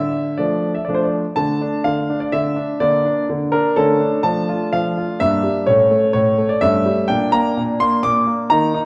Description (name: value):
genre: classical-period piano sonatina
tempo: 126 BPM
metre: 3/4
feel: straight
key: D minor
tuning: A4 = 439 Hz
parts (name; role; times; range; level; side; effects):
- clear concert grand piano; solo; 0.0-8.9 s; G2 to D6; -18 LUFS; equal; none
room: wet recital hall reverb, RT60 1.4 s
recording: worn, warbling old tape, cassette tape, warbly pitch drift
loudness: -18 LUFS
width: mono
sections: 0.0-1.4 A section; 1.4-8.9 B section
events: none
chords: 0.0 Dm; 1.4 D5; 2.8 Bb/D; 3.8 A/D; 4.2 Dm/F; 5.2 Em7b5/G; 5.7 A; 6.6 A7/G; 7.1 Bb69